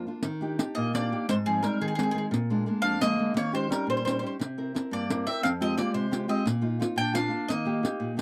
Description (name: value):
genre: italian folk, Italian serenade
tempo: 116 BPM (dotted quarters)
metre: 6/8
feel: straight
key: Eb major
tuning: A4 = 442 Hz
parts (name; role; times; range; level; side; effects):
- nylon-string guitar; accompaniment; 0.0-8.2 s; F2 to Bb4; -32 LUFS; equal; none
- riq; percussion; 0.2-8.2 s; none; -34 LUFS; equal; none
- bowl-back mandolin; melody; 0.7-8.1 s; Ab4 to G5; -33 LUFS; equal; none
- warm clarinet; second line; 0.8-8.2 s; Eb3 to D4; -34 LUFS; equal; none
room: light reverb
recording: dry, close 1970s-style studio recording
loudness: -28 LUFS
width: mono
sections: 0.2-8.2 A section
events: none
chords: 0.2 Ebmaj7; 1.3 Ab; 2.3 Bb7; 3.4 Eb7; 4.4 C7; 5.4 Fmadd9; 6.5 Bbsus4; 7.0 Bb; 7.5 Eb